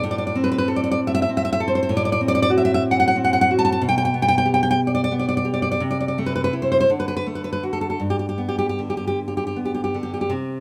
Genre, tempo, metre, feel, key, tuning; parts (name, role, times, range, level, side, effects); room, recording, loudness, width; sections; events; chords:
romantic piece for solo classical guitar; 51-67 BPM (dotted quarters); 6/8; rubato; G major; A4 = 444 Hz
nylon-string guitar; solo; 0.0-10.6 s; G2 to A5; -21 LUFS; equal
light reverb; -21 LUFS; mono
0.0-10.3 A section
0.0 Am; 1.9 Am6; 3.8 G/B; 5.8 Am/C; 6.9 D; 8.0 G